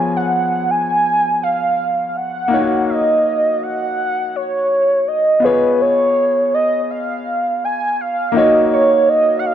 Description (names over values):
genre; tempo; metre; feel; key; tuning
reggae; 82 BPM; 4/4; straight; Eb minor; A4 = 440 Hz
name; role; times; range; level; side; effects
warm velvety synth lead; melody; 0.0-9.5 s; Cb5 to Ab5; -15 LUFS; right 2 dB; chorus, tape echo
warm baby grand piano; accompaniment; 0.0-9.5 s; F3 to Db5; -21 LUFS; left 5 dB; slapback echo
room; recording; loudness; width
light reverb; dry, close 1970s-style studio recording; -14 LUFS; side -10 dB against mid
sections
0.0-8.3 A section; 8.3-9.5 B section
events
none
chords
0.0 Db7; 2.5 Ebm7; 5.4 Db7; 8.3 Ebm7